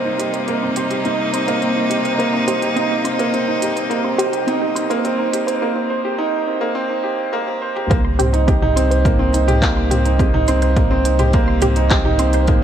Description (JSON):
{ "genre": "piano and strings electronica", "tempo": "105 BPM", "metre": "4/4", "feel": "straight", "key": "C minor", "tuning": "A4 = 442 Hz", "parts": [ { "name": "bright string quartet", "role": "sustained chords", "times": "0.0-5.6 s", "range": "C3 to F4", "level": "-22 LUFS", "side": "equal", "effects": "sidechain pumping, shimmer reverb" }, { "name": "warm upright piano", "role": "riff", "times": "0.0-12.6 s", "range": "Bb3 to C5", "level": "-18 LUFS", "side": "right 2 dB", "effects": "tape echo, shimmer reverb" }, { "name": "organic electronic drum kit", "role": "drums", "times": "0.2-12.6 s", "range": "handclaps, hi-hat, toms", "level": "-25 LUFS", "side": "equal", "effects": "none" }, { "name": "wide unison pluck", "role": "arpeggios", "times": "0.3-12.4 s", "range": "C4 to C6", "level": "-26 LUFS", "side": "right 1 dB", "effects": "none" }, { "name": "warm sub bass", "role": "bass", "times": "7.9-12.6 s", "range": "C2", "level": "-18 LUFS", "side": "equal", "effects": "sidechain pumping" }, { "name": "electronic kick drum", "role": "drums", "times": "7.9-12.6 s", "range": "none", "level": "-18 LUFS", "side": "equal", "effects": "overdrive" } ], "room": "moderate concert hall reverb, RT60 2.1 s", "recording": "high-pass filter", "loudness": "-15 LUFS", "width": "side -9 dB against mid", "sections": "0.0-7.9 A section; 7.9-12.6 B section", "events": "build-up 0.0-7.9; filter sweep 0.0-7.9; drum fill 7.3-7.9; drop 7.9-12.6", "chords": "0.0 Cm7" }